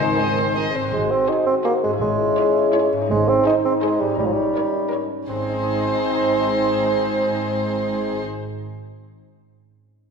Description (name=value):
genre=cinematic, playful, whimsical film cue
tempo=165 BPM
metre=3/4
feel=straight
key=Ab major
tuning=A4 = 445 Hz
part: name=warm chamber violin section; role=melody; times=0.0-8.2 s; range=C5 to Eb5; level=-28 LUFS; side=left 1 dB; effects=none
part: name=bright clarinet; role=second line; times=0.0-0.7 s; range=C5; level=-37 LUFS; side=left 5 dB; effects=none
part: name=bright oboe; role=second line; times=0.0-0.7 s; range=C5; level=-28 LUFS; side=left 1 dB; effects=none
part: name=mellow large flute ensemble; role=second line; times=0.0-0.6 s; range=Ab5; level=-29 LUFS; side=left 7 dB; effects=none
part: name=warm chamber violin section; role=second line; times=0.0-8.2 s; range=Ab4 to C5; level=-31 LUFS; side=left 3 dB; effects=none
part: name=dark chamber viola section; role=accompaniment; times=0.0-8.2 s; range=Ab3 to Gb4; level=-32 LUFS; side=right 1 dB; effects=none
part: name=mellow bassoon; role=accompaniment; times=0.0-8.2 s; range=Eb3 to Eb4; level=-22 LUFS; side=right 2 dB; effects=none
part: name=warm French horn section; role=sustained chords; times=0.0-8.2 s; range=Eb3 to Db5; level=-24 LUFS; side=equal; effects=none
part: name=concert harp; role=arpeggios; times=0.0-9.2 s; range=Ab2 to Eb5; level=-31 LUFS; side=left 6 dB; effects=none
part: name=dark chamber double bass section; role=bass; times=0.0-8.2 s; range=Ab1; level=-32 LUFS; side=right 5 dB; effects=none
part: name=warm chamber cello section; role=bass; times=0.0-8.2 s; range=Ab2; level=-31 LUFS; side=right 4 dB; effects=none
room=wet concert hall reverb, RT60 2.1 s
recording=minimal, uncompressed stereo recording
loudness=-18 LUFS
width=side -5 dB against mid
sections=0.9-5.3 A section; 5.3-7.5 B section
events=none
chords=0.0 Ab; 0.9 Ab7; 2.0 Dbm/Ab; 3.1 Ab; 4.2 Eb7/Ab; 5.3 Ab